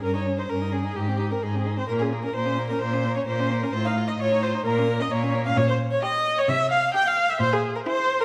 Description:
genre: quick classical-period movement for string quartet.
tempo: 130 BPM.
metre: 4/4.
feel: straight.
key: unclear.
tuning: A4 = 439 Hz.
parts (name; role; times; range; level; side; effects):
clear violin; melody; 0.0-8.2 s; G4 to G5; -32 LUFS; equal; none.
rich violin; second line; 0.0-8.2 s; Bb3 to G4; -33 LUFS; equal; none.
warm viola; accompaniment; 0.0-8.2 s; G4 to G5; -27 LUFS; equal; none.
rich cello; bass; 0.0-7.8 s; G2 to C3; -29 LUFS; equal; none.
room: moderate scoring stage reverb, RT60 1.8 s.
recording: vinyl crackle.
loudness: -24 LUFS.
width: mono.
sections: 0.0-8.2 A section.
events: none.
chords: 0.0 Eb7/G; 1.0 Ab; 1.9 Bbm; 3.7 F7/A; 4.7 Bbm; 5.6 Bbm6; 6.5 C5; 7.4 Caug7/Bb.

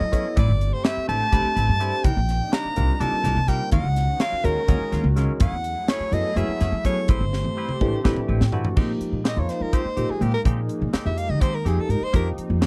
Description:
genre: electric jazz fusion.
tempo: 250 BPM (eighths).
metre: 7/8.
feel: straight.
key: unclear.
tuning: A4 = 436 Hz.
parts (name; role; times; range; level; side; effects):
bright soprano saxophone; melody; 0.0-12.3 s; G4 to Bb5; -29 LUFS; equal; none.
lush unison pad; sustained chords; 0.0-12.7 s; C3 to Ab5; -37 LUFS; equal; chorus.
semi-hollow electric guitar; stabs; 0.0-12.7 s; Eb3 to B4; -38 LUFS; equal; subtle chorus.
upright bass; bass; 0.0-12.7 s; G1 to G3; -26 LUFS; equal; none.
barky tine electric piano; accompaniment; 0.1-12.6 s; E3 to G5; -31 LUFS; equal; overdrive, phaser.
crisp fusion drum kit; drums; 0.1-12.7 s; crash cymbal, hi-hat, kick drum, snare drum, toms; -25 LUFS; equal; none.
room: little or no reverb.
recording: dry, close 1970s-style studio recording.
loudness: -22 LUFS.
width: mono.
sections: 0.0-8.8 A section; 8.8-12.7 B section.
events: drum fill 7.3-8.8; tine electric piano fill 8.1-8.8; soprano saxophone solo 8.8-12.7.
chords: 0.4 Am9; 2.0 Cm9; 3.7 Ebm9; 5.4 Gbm9; 7.1 Am9; 8.8 Bb13sus4; 12.1 F13sus4.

